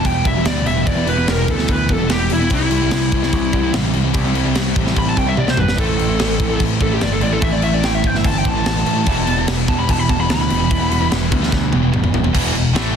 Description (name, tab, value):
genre	heavy metal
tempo	146 BPM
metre	4/4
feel	straight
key	E minor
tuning	A4 = 440 Hz
part	high-gain lead guitar	melody	0.0-11.1 s	E4 to B5	-21 LUFS	left 1 dB	distortion
part	crunchy overdriven guitar	riff	0.0-13.0 s	E2 to E4	-23 LUFS	equal	none
part	high-gain distorted guitar	riff	0.0-13.0 s	E2 to C4	-25 LUFS	left 12 dB	distortion
part	tight distorted guitar	riff	0.0-13.0 s	E2 to C4	-24 LUFS	right 12 dB	distortion
part	growling picked electric bass	bass	0.0-13.0 s	E1 to D2	-21 LUFS	equal	overdrive
part	tight metal drum kit	drums	0.0-12.9 s	crash cymbal, kick drum, snare drum, toms	-20 LUFS	equal	none
room	studio ambience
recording	dense, heavily limited modern master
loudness	-14 LUFS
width	side -7 dB against mid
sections	0.0-12.3 A section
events	lead electric guitar solo 0.0-12.3; drum fill 5.4-5.8, 11.5-12.3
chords	0.0 Em; 2.5 C; 5.8 Am; 9.1 Em; 12.3 E5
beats	0.05 0.46 | 0.87 1.28 1.69 2.10 | 2.51 2.92 3.33 3.74 | 4.15 4.56 4.97 5.38 | 5.79 6.20 6.61 7.02 | 7.43 7.84 8.25 8.66 | 9.07 9.48 9.89 10.30 | 10.71 11.12 11.53 11.94 | 12.35 12.76